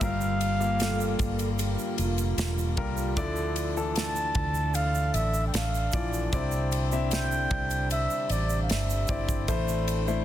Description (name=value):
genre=pop ballad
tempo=76 BPM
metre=4/4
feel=straight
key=D minor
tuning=A4 = 440 Hz
part: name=breathy flugelhorn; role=melody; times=0.0-9.5 s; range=D5 to A5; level=-32 LUFS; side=right 1 dB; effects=ping-pong delay
part: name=warm concert grand piano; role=accompaniment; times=0.0-10.2 s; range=G2 to E5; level=-31 LUFS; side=left 4 dB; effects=none
part: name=mellow brass ensemble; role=sustained chords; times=0.0-10.2 s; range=D3 to F4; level=-38 LUFS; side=right 3 dB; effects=none
part: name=vintage muted fingered electric bass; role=bass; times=0.0-10.2 s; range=E1 to D2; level=-29 LUFS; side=equal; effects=none
part: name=modern studio drum kit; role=drums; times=0.0-10.1 s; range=kick drum, ride cymbal, snare drum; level=-33 LUFS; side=equal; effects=none
part: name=egg shaker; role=percussion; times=0.0-10.2 s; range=none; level=-42 LUFS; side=right 11 dB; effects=none
part: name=mellow French horn section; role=second line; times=0.8-3.7 s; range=F4 to A4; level=-37 LUFS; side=right 8 dB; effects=none
room=light reverb, small room ambience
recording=dense, heavily limited modern master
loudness=-25 LUFS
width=side -12 dB against mid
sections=0.0-10.2 A section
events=none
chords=0.0 Gm7; 3.2 Dmadd9; 6.3 Cadd9; 9.5 Am